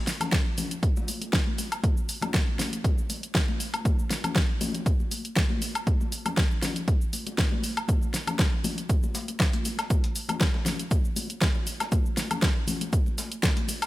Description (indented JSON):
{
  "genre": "house",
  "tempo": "119 BPM",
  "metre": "4/4",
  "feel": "swing 54% on 16ths",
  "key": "none",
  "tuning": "none",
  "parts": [
    { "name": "deep house drum kit", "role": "drums", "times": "0.1-13.9 s", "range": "hi-hat, shaker, snare drum, woodblock", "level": "-29 LUFS", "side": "equal", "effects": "overdrive" },
    { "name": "congas", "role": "percussion", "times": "0.2-13.8 s", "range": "none", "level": "-34 LUFS", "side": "left 3 dB", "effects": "sidechain pumping on perc" },
    { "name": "electronic kick drum", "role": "drums", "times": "0.3-13.5 s", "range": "none", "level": "-25 LUFS", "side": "equal", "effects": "overdrive" },
    { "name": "breakbeat sampler-style drum kit", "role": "drums", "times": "7.9-13.9 s", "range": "hi-hat, shaker, snare drum", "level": "-40 LUFS", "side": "equal", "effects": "sidechain pumping on perc, high-pass filter on perc, high-pass filter on snare, sidechain pumping on hats, high-pass filter on hats" }
  ],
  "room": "little or no reverb",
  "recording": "none",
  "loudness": "-24 LUFS",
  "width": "side -17 dB against mid",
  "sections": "0.0-13.9 A section",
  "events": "none",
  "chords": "none"
}